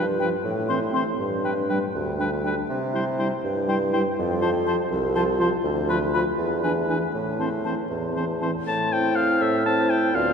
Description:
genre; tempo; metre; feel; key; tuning
quick classical-period movement for wind quintet; 81 BPM (dotted quarters); 6/8; straight; A minor from 5.6 s; A4 = 440 Hz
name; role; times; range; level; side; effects
clear oboe; second line; 0.0-10.3 s; B4 to A5; -28 LUFS; left 2 dB; none
mellow French horn; accompaniment; 0.0-10.3 s; E3 to C4; -31 LUFS; left 1 dB; none
mellow clarinet; accompaniment; 0.0-10.3 s; C4 to F4; -29 LUFS; right 3 dB; none
warm bassoon; bass; 0.0-10.3 s; C2 to C3; -25 LUFS; right 1 dB; none
hollow concert flute; melody; 0.2-10.3 s; C5 to C6; -31 LUFS; left 5 dB; none
room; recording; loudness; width
wet cathedral reverb, RT60 4.5 s; dark, warm production; -21 LUFS; side -6 dB against mid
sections
0.0-8.7 A section; 8.7-10.3 B section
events
none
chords
0.4 Am; 1.2 G; 2.7 C; 4.2 F5; 5.6 Bdim/D; 6.4 E7(no3); 7.1 Am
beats
0.45 | 1.19 1.95 | 2.70 3.44 | 4.18 4.92 | 5.65 6.39 | 7.14 7.90 | 8.66 9.40 | 10.14

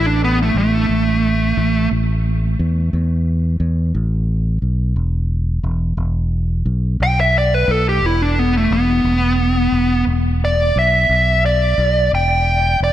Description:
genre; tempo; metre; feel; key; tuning
slow blues; 59 BPM (dotted quarters); 12/8; straight; E minor; A4 = 440 Hz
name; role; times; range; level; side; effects
dark smooth lead guitar; melody; 0.0-12.9 s; A3 to G5; -16 LUFS; right 1 dB; overdrive
fingered electric bass; bass; 0.0-12.9 s; E1 to E2; -17 LUFS; equal; none
room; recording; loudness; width
moderate cathedral reverb, RT60 4.1 s; dreamy mix soaked in reverb; -14 LUFS; side -12 dB against mid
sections
0.0-12.9 A section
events
lead electric guitar solo 0.0-12.9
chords
0.0 A5; 5.0 E5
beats
| 0.87 1.89 2.91 3.93 | 4.95 5.97 7.00 8.02 | 9.04 10.06 11.08 12.11

